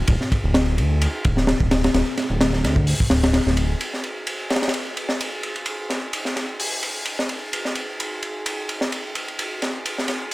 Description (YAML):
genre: breakbeat, breaks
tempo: 129 BPM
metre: 4/4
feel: swing 54% on 16ths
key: unclear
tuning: A4 = 443 Hz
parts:
  - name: fat analog bass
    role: bass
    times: 0.0-3.8 s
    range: D1 to D2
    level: -20 LUFS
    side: equal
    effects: none
  - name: crunchy breakbeat drum kit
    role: drums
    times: 0.1-10.3 s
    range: hi-hat, kick drum, ride cymbal, snare drum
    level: -21 LUFS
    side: equal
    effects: high-pass filter on kick, high-pass filter on cymbals, high-pass filter on hats, high-pass filter on snare, high-pass filter on room
room: little or no reverb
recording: none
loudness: -20 LUFS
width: side -19 dB against mid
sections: 0.0-3.8 A section; 3.8-10.3 B section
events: none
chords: none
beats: | 0.09 0.55 1.01 1.48 | 1.95 2.41 2.88 3.34 | 3.81 4.27 4.74 5.20 | 5.67 6.13 6.60 7.06 | 7.53 7.99 8.46 8.92 | 9.39 9.85 10.32